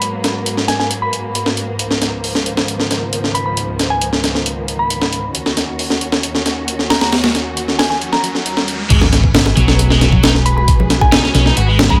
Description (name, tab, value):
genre	breakbeat, breaks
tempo	135 BPM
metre	4/4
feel	straight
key	G# dorian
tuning	A4 = 440 Hz
part	muted studio string section	sustained chords	0.0-12.0 s	C#2 to B4	-25 LUFS	equal	sidechain pumping
part	breakbeat sampler-style drum kit	drums	0.0-12.0 s	crash cymbal, hi-hat, kick drum, snare drum	-17 LUFS	equal	high-pass filter on hats, high-pass filter on snare, high-pass filter on cymbals, high-pass filter on kick
part	glassy synth bell	melody	0.7-12.0 s	G#5 to B5	-23 LUFS	equal	chorus, tremolo, telephone sound, dub echo
part	riser and sub drop	sound effects	7.6-10.7 s	none	-25 LUFS	equal	none
part	overdriven semi-hollow guitar	riff	8.9-12.0 s	F#3 to F#4	-21 LUFS	equal	dub echo
part	hollow-body short-scale fingered electric bass	bass	8.9-12.0 s	G#1 to B1	-17 LUFS	equal	none
part	bongos and congas	percussion	9.0-12.0 s	none	-25 LUFS	equal	none
room	little or no reverb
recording	none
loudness	-15 LUFS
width	mono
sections	0.0-8.9 A section; 8.9-12.0 B section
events	riser 7.6-8.9; drop 8.9-12.0; impact 8.9-10.7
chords	0.0 G#m9; 1.8 C#13; 5.3 D#m7; 8.9 G#m7